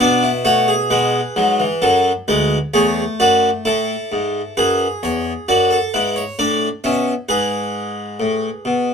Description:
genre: classical, baroque-style 4-part fugue for harpsichord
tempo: 66 BPM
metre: 4/4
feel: straight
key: unclear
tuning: A4 = 440 Hz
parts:
  - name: harpsichord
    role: solo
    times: 0.0-8.9 s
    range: D2 to E5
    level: -15 LUFS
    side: equal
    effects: none
room: light reverb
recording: close, detailed microphones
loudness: -15 LUFS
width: side -6 dB against mid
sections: 0.0-3.7 A section; 3.7-8.9 B section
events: none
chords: 0.0 Bm; 1.8 F#m; 3.7 A; 5.5 Dmaj7/F#; 7.3 G#m

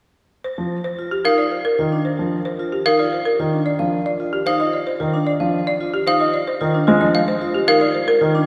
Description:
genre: classical, minimalist pattern music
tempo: 112 BPM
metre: 3/4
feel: straight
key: unclear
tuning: A4 = 440 Hz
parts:
  - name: folk marimba with medium hard mallets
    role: melody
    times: 0.4-8.3 s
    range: G4 to F5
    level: -23 LUFS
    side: equal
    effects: none
  - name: warm baby grand piano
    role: accompaniment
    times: 0.6-8.4 s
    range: Eb3 to Ab3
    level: -24 LUFS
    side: equal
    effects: none
  - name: vibraphone with medium hard mallets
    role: arpeggios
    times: 1.0-8.5 s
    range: D4 to F4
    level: -25 LUFS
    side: equal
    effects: none
  - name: xylophone with plastic mallets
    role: arpeggios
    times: 1.3-7.9 s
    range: F5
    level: -26 LUFS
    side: equal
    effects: none
room: wet church reverb, RT60 3.0 s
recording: small room ambience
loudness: -19 LUFS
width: mono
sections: 0.4-8.5 A section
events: none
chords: 0.4 F7sus4

